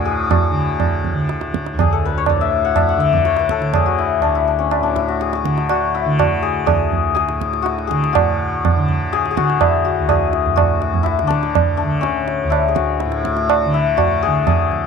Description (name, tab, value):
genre	indian classical, Hindustani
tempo	123 BPM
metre	4/4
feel	straight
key	D raga yaman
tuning	A4 = 440 Hz
part	santur	melody	0.0-14.9 s	C#4 to F#5	-18 LUFS	left 11 dB	none
part	tanpura	drone	0.0-14.9 s	D2 to D3	-21 LUFS	right 1 dB	none
part	tabla	percussion	0.3-14.9 s	none	-19 LUFS	right 7 dB	none
room	light reverb, small room ambience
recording	1960s-style stereo with parts hard left and right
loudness	-15 LUFS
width	side -6 dB against mid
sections	0.0-8.1 A section; 8.1-14.9 B section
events	none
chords	none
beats	| 0.31 0.80 1.29 1.78 | 2.27 2.76 3.25 3.74 | 4.23 4.72 5.21 5.70 | 6.19 6.67 7.16 7.65 | 8.14 8.63 9.12 9.60 | 10.09 10.58 11.06 11.55 | 12.04 12.52 13.01 13.50 | 13.98 14.47